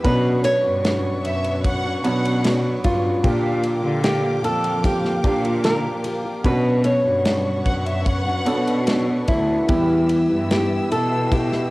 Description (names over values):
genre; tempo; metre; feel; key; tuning
pop ballad; 75 BPM; 4/4; straight; unclear; A4 = 440 Hz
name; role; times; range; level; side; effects
flamenco guitar; melody; 0.0-11.7 s; E4 to C#5; -22 LUFS; equal; cassette tape
warm concert grand piano; accompaniment; 0.0-11.7 s; Bb2 to A4; -26 LUFS; right 2 dB; cassette tape
warm studio string section; sustained chords; 0.0-11.7 s; Bb3 to E6; -32 LUFS; equal; cassette tape
fingerpicked plugged-in steel-string acoustic guitar; arpeggios; 0.0-11.7 s; Bb2 to G4; -28 LUFS; left 2 dB; cassette tape, analog delay
rich studio cello section; bass; 0.0-11.7 s; D2 to D3; -24 LUFS; equal; none
modern studio drum kit; drums; 0.0-11.6 s; kick drum, ride cymbal, snare drum; -25 LUFS; equal; cassette tape
warm studio violin section; second line; 1.2-2.6, 7.7-9.1 s; E5 to F#5; -27 LUFS; equal; cassette tape
room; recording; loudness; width
light reverb; home recording on cassette; -18 LUFS; side -20 dB against mid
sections
0.0-11.7 A section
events
none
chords
0.0 Bmadd9; 3.2 Bb6; 6.4 Bmadd9; 9.7 Em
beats
| 0.04 0.84 1.65 2.44 | 3.24 4.04 4.84 5.65 | 6.45 7.25 8.06 8.87 | 9.69 10.51 11.32